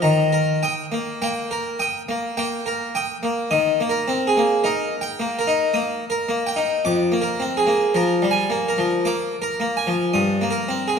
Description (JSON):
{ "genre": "classical, baroque-style suite movement for harpsichord", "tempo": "54 BPM", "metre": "3/4", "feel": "rubato", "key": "Eb major", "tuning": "A4 = 440 Hz", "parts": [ { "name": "harpsichord", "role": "solo", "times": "0.0-11.0 s", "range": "F2 to Eb6", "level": "-19 LUFS", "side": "equal", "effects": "none" } ], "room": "wet concert hall reverb, RT60 2.1 s", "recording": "recorded in a church or concert hall", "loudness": "-19 LUFS", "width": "side -6 dB against mid", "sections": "0.0-3.5 A section; 3.5-11.0 B section", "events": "none", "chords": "0.0 Eb; 6.9 Bb7/F; 10.2 Eb/G" }